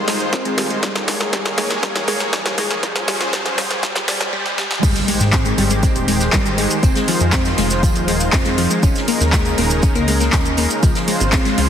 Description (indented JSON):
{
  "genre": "progressive house",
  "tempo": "120 BPM",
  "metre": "4/4",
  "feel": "straight",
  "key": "Ab major",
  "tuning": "A4 = 441 Hz",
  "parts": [
    { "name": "supersaw pad", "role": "sustained chords", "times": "0.0-11.7 s", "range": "Db3 to Db5", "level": "-22 LUFS", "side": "right 1 dB", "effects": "sidechain pumping" },
    { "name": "riser and impact", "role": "sound effects", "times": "0.0-6.8 s", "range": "none", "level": "-28 LUFS", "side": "equal", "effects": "none" },
    { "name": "glassy wavetable pluck", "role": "arpeggios", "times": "0.1-11.6 s", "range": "F3 to Db4", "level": "-22 LUFS", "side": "left 1 dB", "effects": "chorus, sidechain pumping, digital delay" },
    { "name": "deep house drum kit", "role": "drums", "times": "0.1-11.7 s", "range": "crash cymbal, handclaps, hi-hat, snare drum", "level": "-21 LUFS", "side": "equal", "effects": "overdrive, high-pass filter on snare, high-pass filter on hats, high-pass filter on cymbals, high-pass filter on room" },
    { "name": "electronic kick drum", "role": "drums", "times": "0.3-11.4 s", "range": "none", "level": "-18 LUFS", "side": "equal", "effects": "overdrive, high-pass filter on kick, high-pass filter on room" },
    { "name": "plucky analog bass", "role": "bass", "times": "4.8-11.7 s", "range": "Eb1 to Ab2", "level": "-20 LUFS", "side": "equal", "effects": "sidechain pumping" },
    { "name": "soft-mallet drum kit", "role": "drums", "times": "4.8-11.7 s", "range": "hi-hat, snare drum, tambourine", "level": "-30 LUFS", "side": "equal", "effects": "high-pass filter on hats, high-pass filter on snare, high-pass filter on perc, high-pass filter on room" },
    { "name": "cabasa", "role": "percussion", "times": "4.8-11.6 s", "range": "none", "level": "-28 LUFS", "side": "right 2 dB", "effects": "none" }
  ],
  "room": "moderate lush hall reverb, RT60 2.1 s",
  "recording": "heavily compressed radio sound, multiband compression, high-pass filter",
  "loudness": "-15 LUFS",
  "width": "side -9 dB against mid",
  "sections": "0.0-4.8 A section; 4.8-11.7 B section",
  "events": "build-up 0.0-4.8; drum fill 0.0-4.3, 4.5-4.8; riser 0.0-4.8; filter sweep on synth arpeggio sound 0.0-4.8; drop 4.8-11.7; impact 4.8-6.8",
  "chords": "0.0 Fm7; 0.8 Eb7sus4; 2.8 Dbmaj7; 4.8 Abmaj7; 6.8 Fm7; 8.8 Eb7sus4; 10.8 Dbmaj7"
}